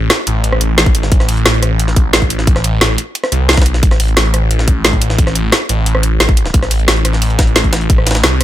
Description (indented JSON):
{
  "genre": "dark technical drum and bass",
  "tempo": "177 BPM",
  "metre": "4/4",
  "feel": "straight",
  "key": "A minor",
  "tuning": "A4 = 439 Hz",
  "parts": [
    { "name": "phased detuned saw bass", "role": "bass", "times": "0.0-8.4 s", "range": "A1 to C2", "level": "-14 LUFS", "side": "equal", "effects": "phaser, overdrive, sidechain pumping" },
    { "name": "drum and bass drum kit", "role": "drums", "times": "0.1-8.4 s", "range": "hi-hat, rim click, snare drum", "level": "-14 LUFS", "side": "equal", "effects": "none" },
    { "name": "jungle sampler-style drum kit", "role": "drums", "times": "0.1-8.4 s", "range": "hi-hat, snare drum", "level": "-21 LUFS", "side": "equal", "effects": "high-pass filter on hats, high-pass filter on snare" },
    { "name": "electronic kick drum", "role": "drums", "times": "0.9-8.0 s", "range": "none", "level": "-12 LUFS", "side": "equal", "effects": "none" }
  ],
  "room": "little or no reverb",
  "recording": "none",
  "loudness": "-10 LUFS",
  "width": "side -13 dB against mid",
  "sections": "0.0-8.4 A section",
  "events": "none",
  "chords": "none"
}